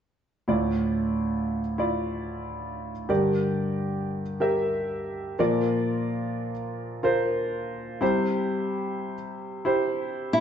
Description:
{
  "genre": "pop",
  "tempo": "92 BPM",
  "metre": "4/4",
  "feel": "straight",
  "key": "D minor",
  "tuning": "A4 = 440 Hz",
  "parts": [
    { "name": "warm concert grand piano", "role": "accompaniment", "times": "0.5-10.4 s", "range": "D2 to E5", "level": "-25 LUFS", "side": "equal", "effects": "none" },
    { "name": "nylon-string guitar", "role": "melody", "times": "10.3-10.4 s", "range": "E4", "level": "-18 LUFS", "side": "equal", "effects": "none" }
  ],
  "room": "wet stone room reverb, RT60 1.3 s",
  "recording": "band playing live in one room, nothing above 7.8 kHz",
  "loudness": "-25 LUFS",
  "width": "side -8 dB against mid",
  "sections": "0.5-10.4 A section",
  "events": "none",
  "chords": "0.5 Dmadd9; 3.1 Gm; 5.4 Bb; 8.0 C",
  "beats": "| 0.48 1.14 1.79 2.44 | 3.10 3.75 4.41 5.07 | 5.72 6.38 7.03 7.69 | 8.34 9.00 9.65 10.31"
}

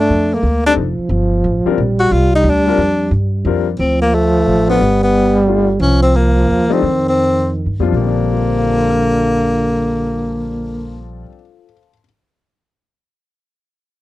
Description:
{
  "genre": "jazz, small-group swing and bop",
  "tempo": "152-180 BPM",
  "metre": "3/4",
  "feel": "swing 64% on 8ths",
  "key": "Bb major",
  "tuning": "A4 = 440 Hz",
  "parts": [
    { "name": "warm tenor saxophone", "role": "melody", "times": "0.0-11.1 s", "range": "A3 to Gb4", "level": "-15 LUFS", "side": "left 1 dB", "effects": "none" },
    { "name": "breathy trombone", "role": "second line", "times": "0.0-11.1 s", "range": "D3 to A3", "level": "-18 LUFS", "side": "right 2 dB", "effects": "none" },
    { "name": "upright bass", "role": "bass", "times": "0.0-11.2 s", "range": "F1 to G2", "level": "-18 LUFS", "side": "equal", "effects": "none" },
    { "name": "warm grand piano", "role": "accompaniment", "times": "0.7-12.0 s", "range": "Bb2 to F6", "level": "-21 LUFS", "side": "left 10 dB", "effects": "none" }
  ],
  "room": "little or no reverb",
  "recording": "dry, close 1970s-style studio recording",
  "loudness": "-12 LUFS",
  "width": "side -16 dB against mid",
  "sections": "0.0-3.8 A section; 3.8-7.9 B section; 7.9-10.3 C section",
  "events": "slowing down 5.8-7.9",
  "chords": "0.0 Gm9; 0.8 Fadd9; 1.8 Bb69; 3.8 Dm; 4.8 G9; 5.8 Cm7; 6.8 Fsus2; 7.9 Bb69",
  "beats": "0.11 0.45 | 0.78 1.12 1.45 | 1.79 2.12 2.46 | 2.79 3.12 3.46 | 3.79 4.13 4.46 | 4.80 5.13 5.46 | 5.80 6.13 6.47 | 6.82 7.18 7.55 | 7.93 8.33 8.72 | 9.11 9.51 9.90"
}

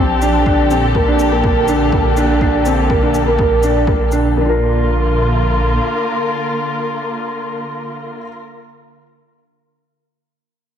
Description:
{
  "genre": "piano and strings electronica",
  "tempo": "123 BPM",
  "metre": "4/4",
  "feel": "straight",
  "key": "Bb major",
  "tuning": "A4 = 440 Hz",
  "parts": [
    { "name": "dark chamber string section", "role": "sustained chords", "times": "0.0-8.4 s", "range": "D3 to Bb4", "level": "-19 LUFS", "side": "left 1 dB", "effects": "sidechain pumping" },
    { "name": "felt-muted upright piano", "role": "riff", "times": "0.0-8.3 s", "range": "Bb3 to Bb4", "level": "-16 LUFS", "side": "right 1 dB", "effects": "lush chorus, ping-pong delay" },
    { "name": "dark detuned saw bass", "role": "bass", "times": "0.0-5.8 s", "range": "Bb1", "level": "-18 LUFS", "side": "equal", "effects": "sidechain pumping" },
    { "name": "shaker", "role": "drums", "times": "0.2-4.2 s", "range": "none", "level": "-36 LUFS", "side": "left 1 dB", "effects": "overdrive, studio reverb" },
    { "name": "electronic kick drum", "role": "drums", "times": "0.5-4.0 s", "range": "none", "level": "-19 LUFS", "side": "equal", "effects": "overdrive, studio reverb" }
  ],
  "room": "wet plate reverb, RT60 2.1 s",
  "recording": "dreamy mix soaked in reverb",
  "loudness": "-13 LUFS",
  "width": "side -8 dB against mid",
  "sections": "0.0-4.4 A section; 4.4-8.3 B section",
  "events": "none",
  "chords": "0.5 Gmadd9/Bb; 4.4 Bb",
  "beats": "| 0.46 0.95 1.44 1.92 | 2.41 2.90 3.39 3.88 | 4.36 4.85 5.34 5.83 | 6.31 6.80 7.29 7.78"
}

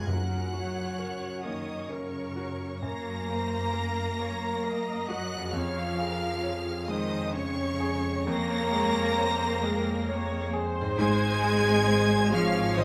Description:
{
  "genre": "cinematic, emotional film score for orchestra",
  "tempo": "66 BPM",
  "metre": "3/4",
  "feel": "rubato",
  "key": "Gb lydian",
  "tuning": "A4 = 439 Hz",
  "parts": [
    { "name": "rich studio violin section", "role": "melody", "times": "0.0-12.8 s", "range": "Db6 to Bb6", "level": "-39 LUFS", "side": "equal", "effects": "none" },
    { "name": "clear symphonic violin section", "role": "second line", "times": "0.0-12.8 s", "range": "Db5 to Bb5", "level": "-41 LUFS", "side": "equal", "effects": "none" },
    { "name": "mellow large flute ensemble", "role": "second line", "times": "0.0-12.8 s", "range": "Db5 to Bb5", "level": "-39 LUFS", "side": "equal", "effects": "none" },
    { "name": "clear concert grand piano", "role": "accompaniment", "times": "0.0-12.8 s", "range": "F2 to Db5", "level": "-36 LUFS", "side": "equal", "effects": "none" },
    { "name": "rich studio viola section", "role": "accompaniment", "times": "0.0-12.8 s", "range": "Ab4 to Eb5", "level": "-40 LUFS", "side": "equal", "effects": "none" },
    { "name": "dark French horn section", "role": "sustained chords", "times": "0.0-12.8 s", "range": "Db4 to Bb4", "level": "-37 LUFS", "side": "equal", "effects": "none" },
    { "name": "concert harp", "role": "arpeggios", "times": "0.0-12.8 s", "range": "F2 to Db5", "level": "-43 LUFS", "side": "equal", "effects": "none" },
    { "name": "rich studio cello section", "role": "bass", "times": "0.0-12.8 s", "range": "Db3 to Bb3", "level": "-35 LUFS", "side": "equal", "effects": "none" },
    { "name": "rich studio double bass section", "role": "bass", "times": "0.1-12.8 s", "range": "Ab1 to Gb2", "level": "-37 LUFS", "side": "equal", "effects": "none" },
    { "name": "timpani", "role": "percussion", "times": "0.1-1.4 s", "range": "Gb2", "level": "-39 LUFS", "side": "equal", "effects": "none" }
  ],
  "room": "wet recital hall reverb, RT60 1.5 s",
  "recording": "none",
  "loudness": "-28 LUFS",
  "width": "mono",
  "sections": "0.1-12.8 A section",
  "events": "none",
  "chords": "0.1 Gb; 5.5 Db6/F; 11.0 Ab",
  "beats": "| 0.08 0.99 1.90 | 2.83 3.75 4.65 | 5.54 6.44 7.35 | 8.29 9.20 10.10 | 10.99 11.89 12.78"
}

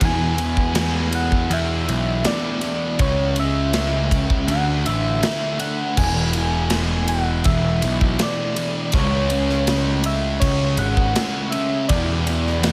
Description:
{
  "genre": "rock, shoegaze and dream pop",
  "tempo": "81 BPM",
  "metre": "4/4",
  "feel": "straight",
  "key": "E mixolydian",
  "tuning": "A4 = 440 Hz",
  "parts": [
    { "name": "soft struck synth lead", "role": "melody", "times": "0.0-12.7 s", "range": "C#5 to G#5", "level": "-28 LUFS", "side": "equal", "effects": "chorus, analog delay" },
    { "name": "thick fuzz guitar", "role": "riff", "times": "0.0-12.7 s", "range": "E2 to D4", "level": "-26 LUFS", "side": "equal", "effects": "distortion, analog chorus" },
    { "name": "fuzz picked electric bass", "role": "bass", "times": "0.0-12.7 s", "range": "E1 to E2", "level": "-24 LUFS", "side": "equal", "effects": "overdrive" },
    { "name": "big rock drum kit", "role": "drums", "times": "0.0-12.7 s", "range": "crash cymbal, kick drum, ride cymbal, snare drum", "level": "-26 LUFS", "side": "equal", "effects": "none" }
  ],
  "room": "light reverb, small room ambience",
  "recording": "faint mains hum",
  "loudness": "-20 LUFS",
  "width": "mono",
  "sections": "0.0-6.0 A section; 6.0-12.7 B section",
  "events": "none",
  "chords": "0.0 E7; 3.0 C#m; 4.5 D5; 6.0 E7; 8.9 C#5; 11.9 E7(no3)",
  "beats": "| 0.01 0.76 1.51 2.25 | 3.00 3.75 4.49 5.23 | 5.98 6.72 7.46 8.20 | 8.94 9.68 10.42 11.16 | 11.89 12.63"
}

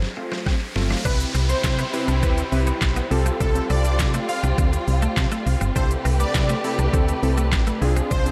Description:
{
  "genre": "dance-pop",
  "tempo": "102 BPM",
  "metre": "4/4",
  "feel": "straight",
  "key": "C major",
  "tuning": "A4 = 440 Hz",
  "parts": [
    { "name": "buzzing marimba with hard mallets", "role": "melody", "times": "0.0-0.7 s", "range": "C5", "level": "-46 LUFS", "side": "equal", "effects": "none" },
    { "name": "solid FM bass", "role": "bass", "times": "0.0-8.3 s", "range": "G1 to C3", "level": "-24 LUFS", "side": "equal", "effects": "sidechain pumping" },
    { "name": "smooth R&B drum kit", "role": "drums", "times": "0.0-8.3 s", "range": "crash cymbal, handclaps, hi-hat, kick drum, shaker, snare drum", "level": "-27 LUFS", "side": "equal", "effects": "none" },
    { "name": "riser and downlifter", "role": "sound effects", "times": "0.0-5.8 s", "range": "none", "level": "-37 LUFS", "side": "equal", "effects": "none" },
    { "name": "warm analog keys", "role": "accompaniment", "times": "0.2-8.3 s", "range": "A3 to A5", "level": "-31 LUFS", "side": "equal", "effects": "chorus, sidechain pumping" },
    { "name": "twelve-string electric guitar", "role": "riff", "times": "0.2-8.2 s", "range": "A3 to D4", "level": "-35 LUFS", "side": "equal", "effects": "ensemble chorus" },
    { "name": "supersaw chords", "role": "melody", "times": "1.1-8.3 s", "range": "A4 to F5", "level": "-32 LUFS", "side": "equal", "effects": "subtle chorus, delay" },
    { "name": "warm studio string section", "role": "sustained chords", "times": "1.1-8.3 s", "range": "C3 to B4", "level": "-31 LUFS", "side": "equal", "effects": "sidechain pumping" }
  ],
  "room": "light reverb",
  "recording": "none",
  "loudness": "-21 LUFS",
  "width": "mono",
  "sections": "0.0-1.1 A section; 1.1-8.3 B section",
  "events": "drum fill 0.0-1.1; riser 0.0-1.1; drop 1.1-8.3; synth keys fill 4.9-5.8",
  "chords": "0.0 G9sus4; 1.1 Cmaj7; 3.1 G9sus4/C; 5.8 Am7/C",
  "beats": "0.46 | 1.05 1.64 2.23 2.82 | 3.40 3.99 4.58 5.17 | 5.76 6.35 6.93 7.52 | 8.11"
}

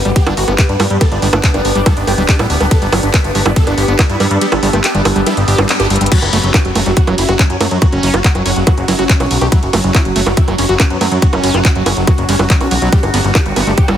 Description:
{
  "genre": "psychedelic trance",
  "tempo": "141 BPM",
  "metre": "4/4",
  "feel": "straight",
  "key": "F# phrygian",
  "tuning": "A4 = 440 Hz",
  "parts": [
    { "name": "overtone-sweeping drone", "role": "sustained chords", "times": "0.0-14.0 s", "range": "F#3 to B4", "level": "-22 LUFS", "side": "equal", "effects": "chorus, built-in reverb, sidechain pumping" },
    { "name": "ethereal airy pad", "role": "texture", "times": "0.0-14.0 s", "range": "C#4 to E6", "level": "-23 LUFS", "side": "equal", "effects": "ensemble chorus, built-in reverb, sidechain pumping" },
    { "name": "dense compressed supersaw", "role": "melody", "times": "0.1-13.9 s", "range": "F#3 to A4", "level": "-20 LUFS", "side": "right 1 dB", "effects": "phaser, sidechain pumping, dub echo" },
    { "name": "overdriven acid bass", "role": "riff", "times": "0.1-14.0 s", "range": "F#3 to G4", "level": "-20 LUFS", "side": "right 1 dB", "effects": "auto-pan, sidechain pumping, dub echo" },
    { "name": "fat analog bass", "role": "bass", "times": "0.1-14.0 s", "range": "D1 to G2", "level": "-16 LUFS", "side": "equal", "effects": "none" },
    { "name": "garage drum kit", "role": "drums", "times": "0.1-14.0 s", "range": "bongos, crash cymbal, handclaps, hi-hat, ride cymbal", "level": "-17 LUFS", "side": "right 2 dB", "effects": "none" },
    { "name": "electronic kick drum", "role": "drums", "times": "0.2-13.9 s", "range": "none", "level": "-12 LUFS", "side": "equal", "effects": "none" }
  ],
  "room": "light reverb",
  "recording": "heavily compressed radio sound",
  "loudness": "-10 LUFS",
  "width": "side -10 dB against mid",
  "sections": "0.0-6.1 A section; 6.1-14.0 A section",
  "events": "drop 0.0-6.1, 6.1-14.0; kick drops out 4.4-6.1; band accent 5.7; drum fill 5.9",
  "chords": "0.0 G5; 6.1 F#5; 12.9 G5",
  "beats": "0.16 0.58 | 1.01 1.44 1.86 2.29 | 2.71 3.14 3.56 3.99 | 4.41 4.84 5.26 5.69 | 6.12 6.54 6.97 7.39 | 7.82 8.24 8.67 9.10 | 9.52 9.95 10.37 10.80 | 11.22 11.65 12.07 12.50 | 12.93 13.35 13.78"
}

